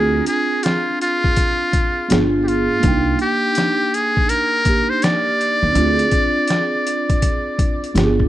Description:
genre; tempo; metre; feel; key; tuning
hip hop, jazz-hop; 82 BPM; 4/4; swing 65% on 16ths; unclear; A4 = 440 Hz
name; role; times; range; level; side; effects
trumpet with metal mute; melody; 0.0-8.0 s; F4 to D5; -19 LUFS; equal; tape echo
mellow tine electric piano; accompaniment; 0.0-8.3 s; Bb3 to G5; -21 LUFS; right 2 dB; analog chorus
upright bass; bass; 0.0-8.3 s; G1 to Eb2; -20 LUFS; equal; none
trip hop sampler-style drum kit; drums; 0.3-8.3 s; hi-hat, kick drum, snare drum; -19 LUFS; left 1 dB; none
room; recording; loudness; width
little or no reverb; dry, close 1970s-style studio recording; -15 LUFS; side -14 dB against mid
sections
0.0-8.3 A section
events
none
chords
0.0 Dm7b5; 2.1 G7b9; 2.8 Cm9 (rootless); 5.8 Dm7b5

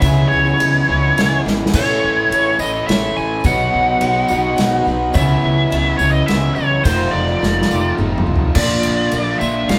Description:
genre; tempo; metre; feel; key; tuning
folk rock and heartland rock; 105 BPM; 3/4; straight; unclear; A4 = 440 Hz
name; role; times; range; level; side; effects
biting lead guitar; melody; 0.0-9.8 s; C5 to G#5; -21 LUFS; equal; overdrive
picked twelve-string acoustic guitar; accompaniment; 0.0-9.8 s; F2 to A4; -26 LUFS; equal; none
hand-pumped harmonium; sustained chords; 0.0-8.6 s; Eb4 to B5; -32 LUFS; equal; none
overdriven electric guitar; riff; 0.0-9.8 s; F2 to F#4; -23 LUFS; equal; none
upright bass; bass; 0.0-9.8 s; F1 to C#2; -23 LUFS; equal; none
unplugged drum kit; drums; 0.0-9.8 s; crash cymbal, kick drum, ride cymbal, snare drum, toms; -23 LUFS; equal; none
tambourine; percussion; 0.0-9.8 s; none; -40 LUFS; equal; none
room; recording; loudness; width
moderate studio reverb, RT60 0.6 s; band playing live in one room; -16 LUFS; mono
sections
0.0-8.6 A section; 8.6-9.8 A section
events
drum fill 1.4, 7.4-8.6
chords
0.0 C#m7; 1.7 A; 3.4 B; 5.1 C#m7; 6.9 F7; 8.6 Bb

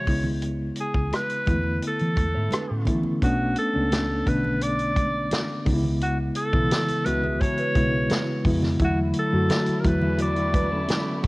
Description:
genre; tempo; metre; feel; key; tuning
lush 1970s-style soul; 86 BPM; 4/4; straight; unclear; A4 = 440 Hz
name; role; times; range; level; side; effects
clear alto saxophone; melody; 0.0-11.2 s; F#4 to D5; -28 LUFS; equal; none
mellow reed electric piano; accompaniment; 0.0-11.3 s; C#3 to F#4; -25 LUFS; left 1 dB; fast tremolo, cassette tape
electric guitar through a small old amp; riff; 0.0-11.3 s; C#4 to E5; -34 LUFS; right 4 dB; spring reverb, cassette tape
hollow-body short-scale fingered electric bass; bass; 0.1-11.3 s; Bb1 to E3; -28 LUFS; equal; none
vintage drum kit; drums; 0.1-11.3 s; hi-hat, kick drum, rim click, snare drum; -26 LUFS; equal; none
congas; percussion; 0.1-11.3 s; none; -35 LUFS; right 2 dB; none
warm studio string section; sustained chords; 8.8-11.3 s; D3 to E4; -36 LUFS; left 1 dB; cassette tape
room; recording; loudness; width
light reverb, small room ambience; home recording on cassette; -21 LUFS; side -22 dB against mid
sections
0.0-3.2 A section; 3.2-11.3 B section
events
none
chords
0.1 C#m7; 1.5 E7sus4; 3.2 Bm9; 5.7 C#m7; 8.8 E9sus4

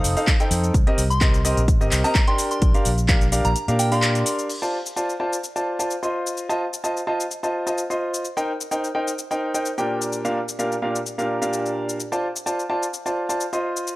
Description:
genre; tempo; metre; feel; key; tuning
piano house; 128 BPM; 4/4; swing 54% on 16ths; unclear; A4 = 440 Hz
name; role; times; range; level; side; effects
soft synth bell; melody; 0.0-4.4 s; G5 to Eb6; -27 LUFS; equal; chorus, analog delay
clear grand piano; riff; 0.0-14.0 s; Bb2 to C6; -23 LUFS; equal; sidechain pumping, low-pass filter, analog delay
fingered electric bass; bass; 0.0-4.2 s; F1 to Bb2; -22 LUFS; equal; sidechain pumping
house drum kit; drums; 0.0-14.0 s; crash cymbal, handclaps, hi-hat, shaker; -27 LUFS; left 1 dB; none
electronic kick drum; drums; 0.3-3.2 s; none; -19 LUFS; equal; none
room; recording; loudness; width
light reverb, digital ambience; dry, gritty hardware recording; -20 LUFS; side -19 dB against mid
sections
0.0-4.5 A section; 4.5-14.0 B section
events
kick drops out 3.6-4.5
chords
0.0 F7; 0.7 Cm7; 2.4 Gm7/Bb; 4.5 Dm7; 6.1 F7; 8.2 Cm7; 9.9 Gm7/Bb; 12.0 Dm7

